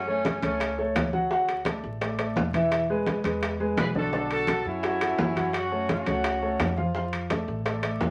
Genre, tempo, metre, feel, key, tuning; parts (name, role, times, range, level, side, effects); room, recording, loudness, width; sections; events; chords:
latin, salsa; 170 BPM; 4/4; straight; A4 = 440 Hz
mellow horn section; melody; 0.0-0.8, 3.8-6.7 s; A3 to B4; -32 LUFS; equal
upright bass; bass; 0.0-8.1 s; E1 to F#2; -38 LUFS; equal
clear upright piano; accompaniment; 0.1-8.1 s; D3 to F#5; -30 LUFS; equal
congas; percussion; 0.1-8.1 s; -34 LUFS; equal
bongos; percussion; 0.2-8.1 s; -37 LUFS; equal
timbales; percussion; 0.3-8.1 s; -34 LUFS; equal
wet studio ambience, RT60 0.5 s; vinyl crackle; -27 LUFS; mono
0.0-8.1 A section
0.0 F#m; 1.3 Dadd9; 2.7 E; 4.1 Bm7; 5.5 F#m; 6.9 Dm